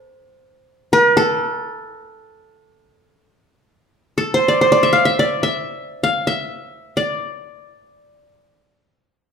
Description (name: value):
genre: Arabic maqam ensemble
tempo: free time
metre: none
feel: none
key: A maqam bayati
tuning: A4 = 440 Hz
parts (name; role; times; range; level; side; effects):
- qanun; solo; 0.0-8.8 s; A4 to F5; -15 LUFS; equal; none
room: moderate large studio reverb, RT60 1.2 s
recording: band playing live in one room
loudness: -15 LUFS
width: side -6 dB against mid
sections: 0.0-3.6 A section; 3.6-9.3 A section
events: none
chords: none